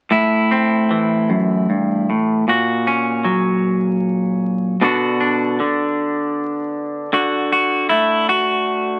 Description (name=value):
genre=folk, solo fingerstyle acoustic guitar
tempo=51 BPM (dotted quarters)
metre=6/8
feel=straight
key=A dorian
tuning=A4 = 440 Hz
part: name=semi-hollow electric guitar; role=solo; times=0.1-9.0 s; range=F#2 to F#4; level=-18 LUFS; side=equal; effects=none
room=moderate studio reverb, RT60 0.5 s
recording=very old 78 rpm record, vinyl crackle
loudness=-18 LUFS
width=mono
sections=0.1-9.0 A section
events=none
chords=0.1 Am; 2.5 F#/A#; 4.8 Bm; 7.1 D